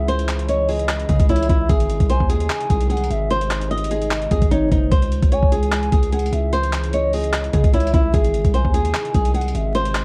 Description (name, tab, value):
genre	hip hop, trap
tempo	149 BPM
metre	4/4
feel	half-time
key	C# harmonic minor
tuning	A4 = 441 Hz
part	flamenco guitar	melody	0.0-10.0 s	D#4 to D#5	-25 LUFS	equal	none
part	gliding portamento lead	second line	0.0-9.7 s	B#4 to G#5	-30 LUFS	equal	chorus, analog delay
part	deep dark ambient pad	sustained chords	0.0-10.0 s	B#2 to E4	-34 LUFS	equal	chorus, built-in reverb
part	distorted 808-style bass	bass	0.0-10.0 s	F#1 to C#3	-24 LUFS	equal	distortion
part	dusty soul sampler-style drum kit	drums	0.1-10.0 s	handclaps, hi-hat, kick drum	-22 LUFS	equal	none
room	light reverb, digital ambience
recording	vinyl crackle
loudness	-19 LUFS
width	mono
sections	0.0-10.0 A section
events	none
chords	0.0 C#m; 1.7 G#; 4.9 C#m; 8.1 G#